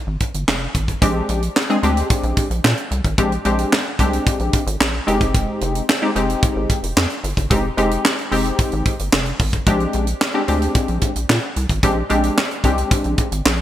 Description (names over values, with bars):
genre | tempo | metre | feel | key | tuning
early-eighties boogie funk | 111 BPM | 4/4 | straight | unclear | A4 = 440 Hz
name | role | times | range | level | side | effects
rubbery square bass | bass | 0.1-13.6 s | F1 to Bb2 | -22 LUFS | equal | none
tight funk drum kit | drums | 0.2-13.6 s | handclaps, hi-hat, kick drum, snare drum | -19 LUFS | equal | gated reverb
funky polysynth comp | accompaniment | 1.0-13.3 s | Ab3 to Ab4 | -20 LUFS | left 1 dB | chorus
room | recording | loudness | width
light reverb, studio ambience | bright 1980s-style digital production | -16 LUFS | side -12 dB against mid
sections
0.0-1.0 A section; 1.0-13.6 B section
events
none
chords
0.0 Fmadd9; 1.0 Bb13; 5.1 Fm9; 9.7 Bb13